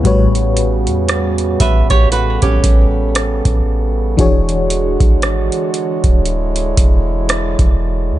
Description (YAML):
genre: contemporary R&B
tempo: 58 BPM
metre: 4/4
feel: swing 58% on 16ths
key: unclear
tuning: A4 = 440 Hz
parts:
  - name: FM electric piano with tremolo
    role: accompaniment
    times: 0.0-8.2 s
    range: A2 to C#5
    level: -20 LUFS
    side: left 4 dB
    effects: none
  - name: mellow French horn section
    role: sustained chords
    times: 0.0-8.2 s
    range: C#3 to C#5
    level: -21 LUFS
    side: right 4 dB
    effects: stereo widening
  - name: warm 808-style bass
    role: bass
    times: 0.0-8.2 s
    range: D1 to E2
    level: -18 LUFS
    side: equal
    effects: none
  - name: booming analog drum machine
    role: drums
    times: 0.1-7.8 s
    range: hi-hat, kick drum, rim click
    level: -14 LUFS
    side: equal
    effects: none
  - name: flamenco guitar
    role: arpeggios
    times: 1.6-3.9 s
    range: C#4 to E5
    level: -19 LUFS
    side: right 4 dB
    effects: ping-pong delay
room: little or no reverb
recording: nothing above 10.3 kHz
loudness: -12 LUFS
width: side -14 dB against mid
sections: 0.0-8.2 A section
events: none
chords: 0.1 A13; 4.2 E13